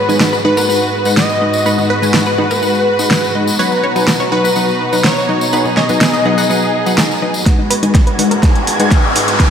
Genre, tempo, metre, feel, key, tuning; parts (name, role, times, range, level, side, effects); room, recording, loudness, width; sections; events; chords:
progressive house; 124 BPM; 4/4; straight; G# minor; A4 = 440 Hz
plucky unison lead; melody; 0.0-7.4 s; B4 to D#5; -17 LUFS; equal; sidechain pumping, analog delay
soft supersaw; second line; 0.0-7.4 s; B4 to D#5; -24 LUFS; left 1 dB; analog chorus, sidechain pumping, analog delay
dark studio string section; sustained chords; 0.0-9.5 s; G#2 to G#4; -19 LUFS; equal; sidechain pumping, low-pass filter
analog pluck; arpeggios; 0.0-9.5 s; B3 to F#5; -22 LUFS; right 1 dB; chorus, sidechain pumping, analog delay
wide unison pluck; stabs; 0.1-9.5 s; F#3 to G#5; -18 LUFS; left 1 dB; sidechain pumping, analog delay
tambourine; percussion; 0.1-7.4 s; -23 LUFS; left 2 dB
deep house drum kit; drums; 0.2-9.5 s; hi-hat, snare drum; -17 LUFS; equal; small room ambience
electronic kick drum; drums; 7.5-9.5 s; -11 LUFS; equal; small room ambience
riser; sound effects; 7.9-9.5 s; -18 LUFS; left 1 dB
backwards swelling texture; texture; 7.8-9.5 s; G#6; -25 LUFS; right 2 dB; built-in reverb, ensemble chorus, sidechain pumping
wet lush hall reverb, RT60 2.2 s; dreamy mix soaked in reverb; -11 LUFS; side -8 dB against mid
0.0-7.5 A section; 7.5-9.5 B section
filter sweep on synth arpeggio sound 0.0-7.5; build-up 7.5-9.5; drum fill 7.5-9.5; filter sweep on string section 7.5-9.5; riser 7.9-9.5
0.0 G#m7; 3.6 B; 7.5 G#m7